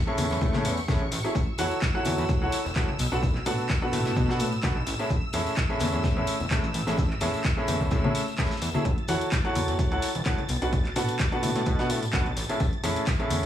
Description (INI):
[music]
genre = piano house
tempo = 128 BPM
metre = 4/4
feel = swing 54% on 16ths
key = A major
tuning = A4 = 440 Hz
[part]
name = analog string pad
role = sustained chords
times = 0.0-13.5 s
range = C#6 to A6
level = -38 LUFS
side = equal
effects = ensemble chorus, sidechain pumping
[part]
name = bright upright piano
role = riff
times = 0.1-13.5 s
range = A2 to F#5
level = -28 LUFS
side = equal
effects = sidechain pumping, digital delay
[part]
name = fat analog bass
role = bass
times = 0.2-13.5 s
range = E1 to B2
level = -29 LUFS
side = equal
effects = sidechain pumping
[part]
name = punchy analog drum machine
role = drums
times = 0.2-13.5 s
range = handclaps, hi-hat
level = -34 LUFS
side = equal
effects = none
[part]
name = shaker and snare drum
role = drums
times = 0.2-13.4 s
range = none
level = -43 LUFS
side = right 2 dB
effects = none
[part]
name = congas and tambourine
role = percussion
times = 0.2-13.4 s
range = none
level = -36 LUFS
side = left 4 dB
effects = none
[part]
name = electronic kick drum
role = drums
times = 0.4-13.2 s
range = none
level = -27 LUFS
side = equal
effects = none
[sound]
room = light reverb, small room ambience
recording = studio reverb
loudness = -24 LUFS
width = side -11 dB against mid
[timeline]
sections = 0.0-13.5 A section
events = none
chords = 0.0 Amaj7; 1.4 F#m7; 3.0 Bm7; 4.9 Amaj7; 8.9 F#m7; 10.5 Bm7; 12.4 Amaj7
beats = 0.41 0.88 | 1.35 1.82 2.29 2.76 | 3.23 3.69 4.16 4.63 | 5.10 5.57 6.04 6.51 | 6.98 7.45 7.91 8.38 | 8.85 9.32 9.79 10.26 | 10.73 11.20 11.66 12.13 | 12.60 13.07